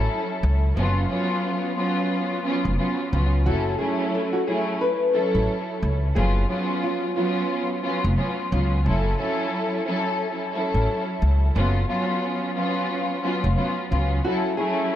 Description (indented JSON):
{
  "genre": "hip hop",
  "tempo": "89 BPM",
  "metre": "4/4",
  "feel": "swing 58% on 16ths",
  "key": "F# minor",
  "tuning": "A4 = 440 Hz",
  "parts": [
    { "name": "warm studio string section", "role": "accompaniment", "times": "0.0-15.0 s", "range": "F#3 to A4", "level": "-24 LUFS", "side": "equal", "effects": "cassette tape, high-pass filter, low-pass filter, tape echo" },
    { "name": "upright bass", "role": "bass", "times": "0.0-14.2 s", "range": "E#1 to C#2", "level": "-21 LUFS", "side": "equal", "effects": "none" },
    { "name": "nylon-string guitar", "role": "melody", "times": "3.5-8.3, 14.2-14.9 s", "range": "E#4 to B4", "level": "-26 LUFS", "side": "left 1 dB", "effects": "high-pass filter, low-pass filter, tape echo" }
  ],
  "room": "light reverb, studio reverb",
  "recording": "echo-heavy mix",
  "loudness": "-21 LUFS",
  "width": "side -11 dB against mid",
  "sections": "0.0-14.2 A section",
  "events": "none",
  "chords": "0.0 F#m7; 0.8 C#7/F#; 3.5 F#m7; 6.2 C#7/F#; 8.9 F#m7; 11.5 C#7/F#; 14.2 F#m7"
}